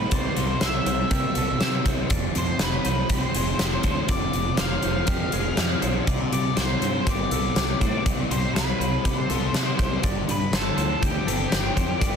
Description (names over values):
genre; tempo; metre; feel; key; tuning
rock, shoegaze and dream pop; 121 BPM; 4/4; straight; C major; A4 = 440 Hz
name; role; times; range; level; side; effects
octave-fuzz lead guitar; melody; 0.0-12.2 s; G4 to F5; -30 LUFS; equal; distortion, tape echo
direct-recorded clean electric guitar; arpeggios; 0.0-12.2 s; G4 to D5; -36 LUFS; right 9 dB; wide subtle chorus, tape echo
crunchy overdriven guitar; riff; 0.0-12.2 s; F2 to C4; -30 LUFS; left 10 dB; wide subtle chorus
overdriven semi-hollow guitar; riff; 0.0-12.2 s; F2 to E4; -32 LUFS; right 12 dB; reverse reverb
growling fingered electric bass; bass; 0.0-12.2 s; F1 to C3; -28 LUFS; equal; overdrive
huge arena drum kit; drums; 0.1-12.1 s; hi-hat, kick drum, snare drum; -25 LUFS; equal; soft clipping on kick
room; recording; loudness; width
small room reverb; dense, heavily limited modern master; -21 LUFS; side -7 dB against mid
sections
0.0-12.2 A section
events
none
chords
0.0 Cmaj7; 2.1 Fm6; 6.1 Cmaj7; 10.0 G7sus4